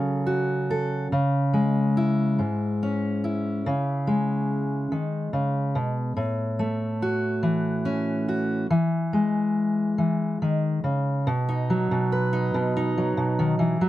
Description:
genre	folk, solo fingerstyle acoustic guitar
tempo	47 BPM (dotted quarters)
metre	6/8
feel	straight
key	unclear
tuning	A4 = 442 Hz
part	fingerpicked steel-string acoustic guitar	solo	0.0-13.9 s	G#2 to B4	-22 LUFS	equal	none
room	light reverb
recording	none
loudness	-22 LUFS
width	side -14 dB against mid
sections	0.0-11.3 A section; 11.3-13.9 B section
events	none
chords	0.0 F#m; 1.1 C#m; 6.2 A6; 8.7 E; 11.3 B

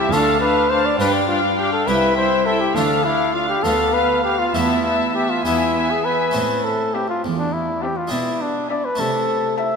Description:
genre	classical, baroque-style concerto movement with solo episodes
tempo	68 BPM (dotted quarters)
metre	6/8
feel	straight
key	A minor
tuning	A4 = 440 Hz
part	mellow trumpet	melody	0.0-9.8 s	D4 to E5	-20 LUFS	left 1 dB	none
part	rich chamber violin section	melody	0.0-9.8 s	F5 to A5	-28 LUFS	left 6 dB	none
part	warm studio violin section	second line	0.0-9.8 s	E5 to F5	-24 LUFS	left 1 dB	none
part	harpsichord	accompaniment	0.0-9.8 s	C2 to F4	-26 LUFS	equal	none
part	warm chamber viola section	accompaniment	0.0-9.8 s	B3 to E4	-26 LUFS	right 1 dB	none
part	rich chamber cello section	bass	0.1-9.7 s	C2 to C3	-29 LUFS	right 4 dB	none
room	wet concert hall reverb, RT60 2.4 s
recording	none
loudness	-16 LUFS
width	side -5 dB against mid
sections	0.0-6.4 A section; 6.4-9.8 A section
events	none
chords	0.1 Dm; 1.0 G5; 1.9 C; 2.8 Dm; 3.6 Bdim/D; 4.5 Esus4; 5.5 E; 6.4 Am; 8.1 E7/B; 9.0 Am/C

